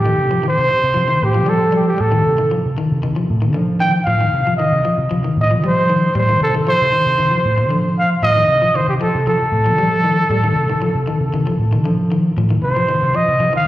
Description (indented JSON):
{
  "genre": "afrobeat",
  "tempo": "116 BPM",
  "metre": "4/4",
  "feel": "straight",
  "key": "C dorian",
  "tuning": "A4 = 440 Hz",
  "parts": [
    { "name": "breathy trumpet", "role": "melody", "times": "0.0-13.7 s", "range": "G4 to G5", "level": "-16 LUFS", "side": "right 1 dB", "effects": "slapback echo" },
    { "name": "fingered electric bass", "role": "bass", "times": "0.0-13.7 s", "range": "A2 to F3", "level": "-18 LUFS", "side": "equal", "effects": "none" },
    { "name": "electric guitar at the edge of break-up", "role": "arpeggios", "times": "0.1-13.7 s", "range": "D3 to G3", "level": "-22 LUFS", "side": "left 3 dB", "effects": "slapback echo" }
  ],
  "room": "light reverb, small room ambience",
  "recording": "live gig heard through the venue's PA, recital hall reverb",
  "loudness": "-14 LUFS",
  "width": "side -14 dB against mid",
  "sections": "0.0-13.7 A section",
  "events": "none",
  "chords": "0.0 Cm6"
}